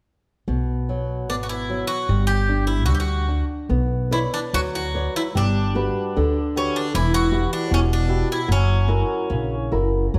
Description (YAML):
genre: fado-style ballad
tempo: 71-80 BPM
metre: 2/4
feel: rubato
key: B harmonic minor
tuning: A4 = 441 Hz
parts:
  - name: flamenco guitar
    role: accompaniment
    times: 0.5-10.2 s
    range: B2 to D5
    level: -27 LUFS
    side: equal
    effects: none
  - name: upright bass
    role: bass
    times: 0.5-10.2 s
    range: E1 to D2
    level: -24 LUFS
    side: equal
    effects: none
  - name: Greek bouzouki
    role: melody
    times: 1.3-9.7 s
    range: C#4 to G4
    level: -28 LUFS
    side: equal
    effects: none
room: moderate scoring stage reverb, RT60 1.6 s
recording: none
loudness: -22 LUFS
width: mono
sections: 0.5-3.7 A section; 3.7-10.2 B section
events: none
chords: 0.5 B5; 2.1 G5; 3.7 Bmadd9; 5.4 Gmaj7; 6.9 Emadd9; 8.5 F#7